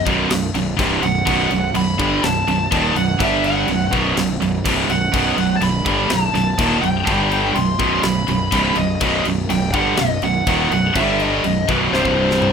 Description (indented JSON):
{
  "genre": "heavy metal",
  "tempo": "124 BPM",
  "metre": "4/4",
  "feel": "straight",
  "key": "B phrygian dominant",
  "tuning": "A4 = 440 Hz",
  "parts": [
    { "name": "high-gain lead guitar", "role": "melody", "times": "0.0-12.5 s", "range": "B4 to C6", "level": "-22 LUFS", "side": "equal", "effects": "distortion" },
    { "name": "heavy high-gain guitar", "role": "riff", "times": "0.0-12.5 s", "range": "B1 to G3", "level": "-19 LUFS", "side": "right 8 dB", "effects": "distortion" },
    { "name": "fuzz fingered electric bass", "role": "bass", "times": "0.0-12.5 s", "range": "B0 to G1", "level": "-25 LUFS", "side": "left 2 dB", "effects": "overdrive" },
    { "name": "scooped high-gain guitar", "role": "riff", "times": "0.1-12.5 s", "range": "B1 to G3", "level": "-22 LUFS", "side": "left 14 dB", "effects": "distortion" },
    { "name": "tight metal drum kit", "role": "drums", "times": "0.1-12.5 s", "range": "crash cymbal, kick drum, snare drum, toms", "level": "-26 LUFS", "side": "left 2 dB", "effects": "none" }
  ],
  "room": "studio reverb",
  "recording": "rough home demo mix",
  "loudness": "-15 LUFS",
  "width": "side -6 dB against mid",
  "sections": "0.0-12.5 A section",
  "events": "half time 0.0-12.5; drum fill 11.9-12.5",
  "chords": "0.0 B; 3.2 G5; 3.7 B; 7.1 G5; 7.6 B; 11.0 G5; 11.4 B; 11.9 C5",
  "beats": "0.31 0.79 | 1.27 1.75 2.24 2.72 | 3.20 3.68 4.17 4.65 | 5.14 5.62 6.10 6.59 | 7.07 7.56 8.04 8.53 | 9.02 9.50 9.99 10.47 | 10.96 11.44 11.93 12.41"
}